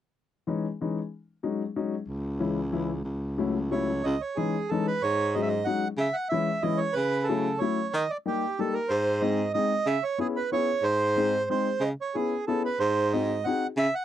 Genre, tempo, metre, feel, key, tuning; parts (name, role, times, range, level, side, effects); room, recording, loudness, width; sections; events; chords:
musette waltz; 186 BPM; 3/4; rubato; C# minor; A4 = 440 Hz
warm upright piano; accompaniment; 0.5-13.6 s; E3 to G#4; -29 LUFS; left 5 dB
clear baritone saxophone; bass; 2.1-13.9 s; C#2 to D#3; -28 LUFS; equal
accordion; melody; 3.7-14.0 s; G4 to F#5; -27 LUFS; right 4 dB
light reverb; dry, close 1970s-style studio recording; -25 LUFS; side -11 dB against mid
0.1-4.0 A section; 4.0-14.0 B section
0.1 C#madd9; 1.1 G#7sus4; 2.1 C#m; 3.1 F#m7/C#; 4.0 C#madd9; 5.0 G#7sus4; 6.0 C#m; 6.9 F#m7/C#; 7.9 D#; 8.9 G#; 9.9 C#m7; 10.8 G#; 11.8 C#m7; 12.8 G#7